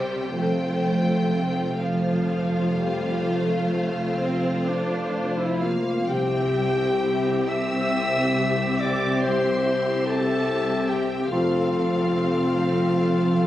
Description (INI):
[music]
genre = classical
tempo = 40-48 BPM (dotted quarters)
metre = 12/8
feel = rubato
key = F major, C major from 6.1 s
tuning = A4 = 440 Hz
[part]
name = warm studio violin section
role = melody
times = 0.0-13.5 s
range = E5 to G5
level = -34 LUFS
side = left 1 dB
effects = none
[part]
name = rich studio violin section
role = second line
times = 0.0-13.5 s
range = F4 to E6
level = -31 LUFS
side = equal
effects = none
[part]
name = warm studio viola section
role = accompaniment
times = 0.0-13.5 s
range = F3 to A4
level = -27 LUFS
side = equal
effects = none
[part]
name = mellow French horn section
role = sustained chords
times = 0.0-5.3 s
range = A4 to C5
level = -32 LUFS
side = left 2 dB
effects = none
[part]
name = concert harp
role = arpeggios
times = 0.0-13.5 s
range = F2 to F5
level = -33 LUFS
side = left 4 dB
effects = none
[part]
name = rich studio double bass section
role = bass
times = 0.0-13.5 s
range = F1 to C2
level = -30 LUFS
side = right 2 dB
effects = none
[part]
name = warm studio cello section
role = bass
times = 0.0-13.5 s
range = C2 to C3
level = -28 LUFS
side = right 1 dB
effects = none
[part]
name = warm clarinet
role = second line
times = 5.6-13.5 s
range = F4 to E5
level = -24 LUFS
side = left 2 dB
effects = none
[sound]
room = moderate recital hall reverb, RT60 1.4 s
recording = recorded on a phone in the room, studio reverb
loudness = -21 LUFS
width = side -13 dB against mid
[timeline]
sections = 0.0-6.1 A section; 6.1-13.5 B section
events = none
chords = 0.3 F; 6.1 C; 11.3 F